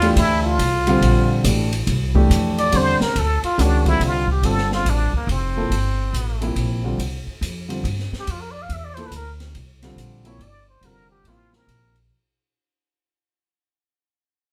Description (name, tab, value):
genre	modal jazz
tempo	141 BPM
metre	3/4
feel	swing 64% on 8ths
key	unclear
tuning	A4 = 440 Hz
part	trumpet with plunger mute	melody	0.0-12.0 s	Bb3 to F5	-25 LUFS	equal	none
part	warm grand piano	accompaniment	0.0-11.9 s	C3 to A4	-24 LUFS	equal	none
part	upright bass	bass	0.0-12.1 s	F1 to G2	-23 LUFS	equal	none
part	open jazz drum kit	drums	0.0-12.0 s	hi-hat, kick drum, ride cymbal, snare drum	-30 LUFS	equal	none
room	moderate studio reverb, RT60 0.7 s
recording	band playing live in one room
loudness	-20 LUFS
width	mono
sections	0.0-1.9 A section; 1.9-12.1 B section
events	fade-out 1.9-12.1; muted trumpet solo 1.9-12.1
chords	0.0 C9sus4; 1.9 G9sus4; 7.0 C9sus4